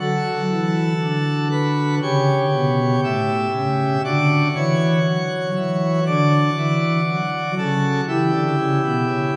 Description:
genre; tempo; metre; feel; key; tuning
classical, chorale-style piece for pipe organ; 59 BPM; 4/4; rubato; unclear; A4 = 439 Hz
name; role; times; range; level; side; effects
pipe organ, plenum; solo; 0.0-9.4 s; A2 to E5; -20 LUFS; equal; none
room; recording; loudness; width
wet church reverb, RT60 3.1 s; heard from further back in the room; -20 LUFS; mono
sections
0.0-9.4 A section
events
none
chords
0.0 D; 2.0 A7; 4.1 D; 8.1 Em

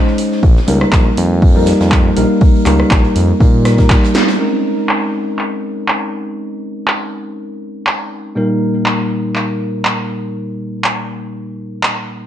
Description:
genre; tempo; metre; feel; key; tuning
deep house; 121 BPM; 4/4; swing 54% on 16ths; Bb dorian; A4 = 440 Hz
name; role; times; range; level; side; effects
bell-like tine electric piano; stabs; 0.0-12.3 s; Bb2 to C5; -16 LUFS; equal; wide subtle chorus, sidechain pumping, low-pass filter, ping-pong delay
oversized low-tuned drum kit; drums; 0.1-4.4 s; hi-hat, snare drum; -32 LUFS; right 2 dB; sidechain pumping on hats, high-pass filter on hats, vintage 12-bit sampler grit, high-pass filter on snare, high-pass filter on room
punchy analog drum machine; drums; 0.2-11.9 s; crash cymbal, handclaps, hi-hat, rim click, snare drum; -18 LUFS; right 1 dB; low-pass filter on snare, vintage 12-bit sampler grit, low-pass filter on hats, low-pass filter on cymbals, low-pass filter on room
smooth synth bass; bass; 0.4-4.0 s; Bb1 to Bb2; -15 LUFS; equal; sidechain pumping
electronic kick drum; drums; 0.4-4.0 s; none; -11 LUFS; equal; vintage 12-bit sampler grit
room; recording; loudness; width
moderate plate reverb, RT60 1.2 s; dreamy mix soaked in reverb, cassette tape; -12 LUFS; side -11 dB against mid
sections
0.0-4.4 A section; 4.4-12.3 B section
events
drum fill 4.1; band accent 4.1; filter sweep on tine electric piano 4.4-12.3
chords
0.4 Eb/Bb; 4.4 Bbm11; 8.4 Eb/Bb

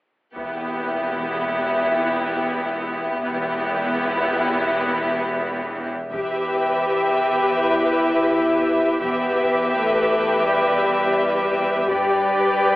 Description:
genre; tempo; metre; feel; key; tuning
cinematic, epic orchestral film score; 83 BPM (dotted quarters); 12/8; straight; E minor; A4 = 440 Hz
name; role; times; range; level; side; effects
rich symphonic viola section; accompaniment; 0.3-12.8 s; B3 to G4; -24 LUFS; equal; none
warm chamber violin section; melody; 0.4-12.8 s; G4 to E5; -26 LUFS; left 1 dB; none
warm symphonic violin section; second line; 0.4-12.8 s; E4 to B4; -24 LUFS; left 1 dB; none
rich symphonic cello section; bass; 0.4-12.8 s; E2 to G2; -31 LUFS; right 1 dB; none
rich symphonic double bass section; bass; 0.4-12.3 s; E1 to G1; -37 LUFS; right 1 dB; none
taiko ensemble; drums; 0.4-1.7, 6.1-7.1, 11.9-12.8 s; none; -44 LUFS; equal; none
warm French horn section; sustained chords; 6.1-12.8 s; G3 to G4; -21 LUFS; left 1 dB; none
room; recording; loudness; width
wet scoring stage reverb, RT60 1.7 s; telephone sound; -18 LUFS; side -18 dB against mid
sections
0.4-6.1 A section; 6.1-12.8 B section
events
none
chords
0.4 Em; 11.9 G

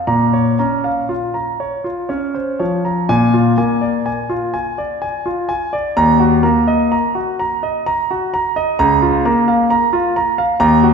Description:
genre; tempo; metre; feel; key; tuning
classical, baroque-style suite movement for grand piano; 62 BPM; 3/4; uneven beats, rubato; Bb minor; A4 = 441 Hz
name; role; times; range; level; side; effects
clear concert grand piano; solo; 0.0-10.9 s; Db2 to Bb5; -14 LUFS; equal; none
room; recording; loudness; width
wet scoring stage reverb, RT60 2.1 s; heard from further back in the room; -14 LUFS; side -6 dB against mid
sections
0.0-3.1 A section; 3.1-10.9 A section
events
none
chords
0.1 Bbm; 3.1 Bb7; 6.0 Ebm; 8.8 Bbm/Db

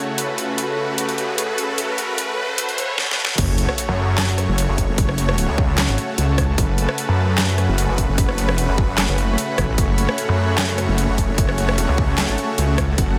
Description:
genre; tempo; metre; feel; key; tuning
heavy wobble dubstep; 150 BPM; 4/4; half-time; F# minor; A4 = 441 Hz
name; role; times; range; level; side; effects
supersaw chords; sustained chords; 0.0-13.2 s; C#3 to F#5; -28 LUFS; equal; sidechain pumping
riser and sub drop; sound effects; 0.0-5.0 s; none; -31 LUFS; equal; none
granular cloud pad; texture; 0.0-13.2 s; A3 to B5; -30 LUFS; equal; built-in reverb, sidechain pumping
dubstep drum kit; drums; 0.2-13.1 s; crash cymbal, handclaps, hi-hat, rim click, snare drum; -25 LUFS; equal; overdrive, small room ambience
wobble bass; bass; 3.4-13.2 s; F#1 to C#2; -22 LUFS; equal; chorus, overdrive
electronic kick drum; drums; 3.4-13.1 s; none; -23 LUFS; equal; small room ambience
snarling distorted saw bass; bass; 3.9-12.4 s; F#1 to F#2; -22 LUFS; equal; distortion, overdrive
room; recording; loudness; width
light reverb; high-pass filter; -20 LUFS; mono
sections
0.0-3.4 A section; 3.4-13.2 B section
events
build-up 0.0-3.4; riser 0.0-3.0; filter sweep 0.0-3.4; drum fill 3.0-3.4; drop 3.4-13.2; impact 3.4-5.0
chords
0.0 F#m

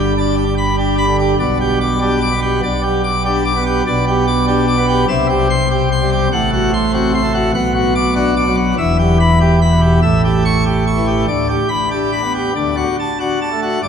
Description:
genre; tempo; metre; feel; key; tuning
classical, organ toccata; 97 BPM; 4/4; straight; G major; A4 = 441 Hz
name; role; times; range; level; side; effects
pipe organ, plenum; solo; 0.0-13.9 s; E1 to D6; -13 LUFS; equal; none
room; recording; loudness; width
wet cathedral reverb, RT60 5.0 s; none; -13 LUFS; side -7 dB against mid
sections
0.0-13.8 A section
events
none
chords
0.0 G; 1.4 G/B; 5.1 C; 6.3 F#dim/A; 7.5 Bm; 8.8 Em; 10.0 A7; 11.3 G/D; 12.6 D

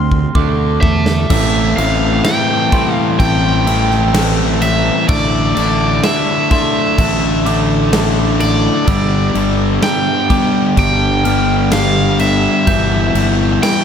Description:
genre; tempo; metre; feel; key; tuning
post-rock; 63 BPM; 4/4; straight; A minor; A4 = 441 Hz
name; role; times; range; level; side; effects
crunchy overdriven guitar; melody; 0.0-13.8 s; D5 to C6; -18 LUFS; right 1 dB; diffuse ambient delay
clean electric guitar; arpeggios; 0.0-13.8 s; A2 to F4; -23 LUFS; left 3 dB; none
glockenspiel with soft plastic mallets; arpeggios; 0.0-13.6 s; C6 to G6; -27 LUFS; right 4 dB; diffuse ambient delay
distorted electric guitar; riff; 0.0-13.8 s; E2 to D4; -19 LUFS; right 11 dB; distortion
fuzz fingered electric bass; bass; 0.0-13.6 s; G1 to E2; -17 LUFS; equal; overdrive
big rock drum kit; drums; 0.1-13.8 s; crash cymbal, kick drum, snare drum; -19 LUFS; equal; none
sludgy distorted guitar; riff; 1.3-13.8 s; A2 to A4; -18 LUFS; left 12 dB; overdrive
room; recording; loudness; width
light reverb, studio ambience; none; -11 LUFS; side -8 dB against mid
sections
0.0-1.3 A section; 1.3-13.8 B section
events
build-up 0.0-1.3; drum fill 0.0-1.3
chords
0.0 Dm7; 1.3 Am7; 5.1 Dsus2/A; 8.9 G; 12.7 Em/G

